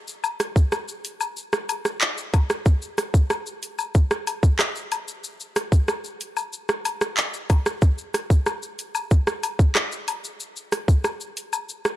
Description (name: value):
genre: dancehall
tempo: 93 BPM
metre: 4/4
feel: straight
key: none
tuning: none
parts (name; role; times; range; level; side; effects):
- island pop drum kit; drums; 0.1-12.0 s; handclaps, hi-hat, kick drum, rim click, shaker; -21 LUFS; equal; none
- woodblock and cabasa; percussion; 0.2-11.7 s; none; -29 LUFS; left 6 dB; none
room: little or no reverb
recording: dark, warm production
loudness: -21 LUFS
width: side -14 dB against mid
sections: 0.0-2.7 A section; 2.7-12.0 B section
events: none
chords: none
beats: | 0.08 0.72 1.37 2.01 | 2.66 3.30 3.95 4.59 | 5.24 5.88 6.53 7.17 | 7.82 8.46 9.11 9.76 | 10.40 11.05 11.69